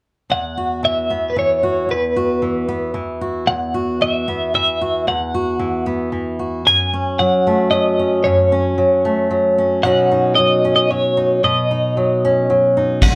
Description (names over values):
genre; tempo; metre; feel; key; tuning
indie folk with a building arrangement; 113 BPM; 3/4; straight; unclear; A4 = 437 Hz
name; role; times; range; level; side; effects
twelve-string electric guitar; melody; 0.3-13.2 s; B4 to G#5; -20 LUFS; equal; tremolo
fingerpicked steel-string acoustic guitar; accompaniment; 0.3-13.2 s; E2 to F#4; -20 LUFS; equal; none
soft brush drum kit; drums; 13.0-13.1 s; crash cymbal, kick drum; -13 LUFS; equal; none
room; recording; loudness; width
moderate studio reverb, RT60 0.5 s; band playing live in one room; -17 LUFS; mono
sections
0.3-13.0 A section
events
none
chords
0.3 Esus2; 6.7 F#m; 9.8 Badd9